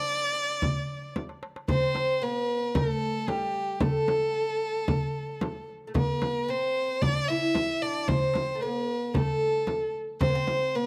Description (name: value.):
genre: Arabic maqam ensemble.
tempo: 113 BPM.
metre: 4/4.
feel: straight.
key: A maqam bayati.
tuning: A4 = 439 Hz.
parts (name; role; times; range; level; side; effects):
warm violin; melody; 0.0-10.9 s; G4 to E5; -31 LUFS; equal; none.
oud; second line; 0.0-10.9 s; G3 to E4; -34 LUFS; equal; none.
darbuka; percussion; 0.1-10.8 s; none; -34 LUFS; equal; none.
frame drum; percussion; 0.6-10.6 s; none; -33 LUFS; equal; none.
room: light reverb, studio reverb.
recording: dry, close 1970s-style studio recording.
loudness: -28 LUFS.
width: mono.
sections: 0.0-1.7 A section; 1.7-10.9 B section.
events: drum fill 1.1-1.7.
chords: none.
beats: 0.09 0.62 1.15 | 1.68 2.22 2.75 3.28 | 3.81 4.35 4.88 5.41 | 5.95 6.48 7.01 7.54 | 8.08 8.61 9.14 9.68 | 10.21 10.74.